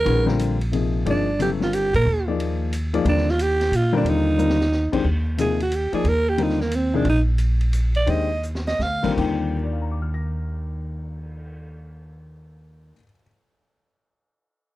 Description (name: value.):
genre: modal jazz.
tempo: 153-180 BPM.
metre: 3/4.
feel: swing 64% on 8ths.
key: Eb major.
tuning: A4 = 439 Hz.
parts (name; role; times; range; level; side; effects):
growling alto saxophone; melody; 0.0-9.1 s; Bb3 to F5; -22 LUFS; right 2 dB; none.
warm baby grand piano; accompaniment; 0.0-13.3 s; Eb2 to Bb6; -24 LUFS; left 5 dB; none.
upright bass; bass; 0.1-12.9 s; G1 to Bb2; -23 LUFS; equal; none.
vintage drum kit; drums; 0.1-11.4 s; crash cymbal, cymbal swell, hi-hat, kick drum, ride cymbal, snare drum; -35 LUFS; equal; none.
room: little or no reverb.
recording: dry, close 1970s-style studio recording.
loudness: -19 LUFS.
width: side -16 dB against mid.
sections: 0.0-5.1 A section; 5.1-9.2 B section; 9.2-11.5 C section.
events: band accent 1.9; drum fill 4.4-4.7, 8.4-8.8; alto saxophone solo 5.1-9.2; slowing down 7.0-9.2.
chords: 0.0 Ebmaj9.